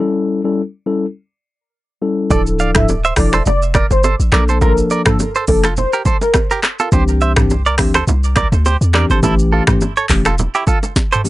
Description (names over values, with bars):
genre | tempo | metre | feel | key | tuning
afrobeats | 104 BPM | 4/4 | swing 55% on 16ths | unclear | A4 = 441 Hz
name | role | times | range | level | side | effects
mellow tine electric piano | accompaniment | 0.0-11.3 s | E3 to A4 | -17 LUFS | left 3 dB | none
warm velvety synth lead | melody | 2.3-6.3 s | A4 to E5 | -20 LUFS | equal | chorus, digital delay
direct-recorded clean electric guitar | riff | 2.3-11.2 s | E4 to F5 | -18 LUFS | right 4 dB | harmonic tremolo, digital delay
warm 808-style bass | bass | 2.3-10.5 s | D1 to E2 | -16 LUFS | equal | none
afro-pop drum kit | drums | 2.3-11.3 s | finger snaps, handclaps, hi-hat, kick drum, rim click, shaker, snare drum, toms | -16 LUFS | equal | none
congas and bongos | percussion | 2.3-11.3 s | none | -23 LUFS | right 2 dB | none
room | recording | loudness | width
little or no reverb | nothing above 10.8 kHz | -12 LUFS | side -17 dB against mid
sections
0.0-11.3 A section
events
drum fill 11.0-11.3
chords
0.0 A7; 2.3 Dmadd9; 4.3 Bbmaj7; 6.9 Cadd9; 9.2 A7